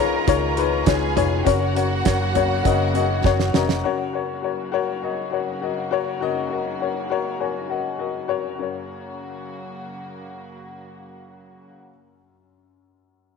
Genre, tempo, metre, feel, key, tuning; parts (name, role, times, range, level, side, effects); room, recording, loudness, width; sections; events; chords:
piano-driven pop; 101 BPM; 4/4; straight; F# major; A4 = 444 Hz
warm symphonic violin section; second line; 0.0-3.8 s; F#4 to A#5; -27 LUFS; right 3 dB
warm upright piano; accompaniment; 0.0-13.4 s; F#2 to A#5; -23 LUFS; left 11 dB
warm studio string section; sustained chords; 0.0-11.7 s; C#3 to F#4; -33 LUFS; right 3 dB
vintage muted fingered electric bass; bass; 0.0-3.8 s; E#1 to C#2; -24 LUFS; right 3 dB
damped 70s drum kit; drums; 0.3-3.8 s; hi-hat, kick drum, snare drum, toms; -23 LUFS; right 6 dB
moderate plate reverb, RT60 1.8 s, small room ambience; 1960s-style stereo with parts hard left and right; -20 LUFS; side -5 dB against mid
0.0-3.8 A section; 3.8-8.6 B section; 8.6-11.0 C section
upright piano fill 2.9-3.8, 6.8-8.6; drum fill 3.2-3.8
0.0 C#add9; 1.5 F#